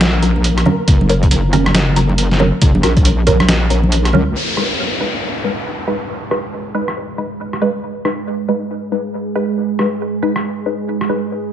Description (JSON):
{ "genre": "deep dubstep", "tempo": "138 BPM", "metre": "4/4", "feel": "swing 62% on 16ths, half-time", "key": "G# minor", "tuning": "A4 = 440 Hz", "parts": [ { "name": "wobble bass", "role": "bass", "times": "0.0-4.3 s", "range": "F#1 to C#2", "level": "-15 LUFS", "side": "equal", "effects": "chorus, tube saturation" }, { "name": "trip hop sampler-style drum kit", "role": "drums", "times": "0.0-11.1 s", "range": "hi-hat, rim click, snare drum", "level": "-19 LUFS", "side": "equal", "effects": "overdrive, low-pass filter on hats, low-pass filter on snare, low-pass filter on room" }, { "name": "flickering grainy texture", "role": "texture", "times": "0.0-4.4 s", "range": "A#3 to A#4", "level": "-28 LUFS", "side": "equal", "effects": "built-in reverb" }, { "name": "filtered dub chord stab", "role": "stabs", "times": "0.2-11.2 s", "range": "F#3 to B4", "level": "-20 LUFS", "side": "left 1 dB", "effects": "phaser, dub echo" }, { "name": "congas", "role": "percussion", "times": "0.4-4.2 s", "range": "none", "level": "-20 LUFS", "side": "right 2 dB", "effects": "dub echo" }, { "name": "electronic kick drum", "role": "drums", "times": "0.9-3.4 s", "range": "none", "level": "-12 LUFS", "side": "equal", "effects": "overdrive" }, { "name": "deep dark ambient pad", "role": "sustained chords", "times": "5.7-11.5 s", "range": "G#3 to G#4", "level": "-22 LUFS", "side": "right 5 dB", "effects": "chorus, built-in reverb" }, { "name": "downlifter", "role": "sound effects", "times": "4.4-7.8 s", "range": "none", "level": "-22 LUFS", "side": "left 1 dB", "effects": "none" } ], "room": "light reverb, digital ambience", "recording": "nothing above 10.5 kHz", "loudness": "-14 LUFS", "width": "side -10 dB against mid", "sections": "0.0-4.4 A section; 4.4-11.5 B section", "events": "none", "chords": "0.0 F#; 4.4 G#m" }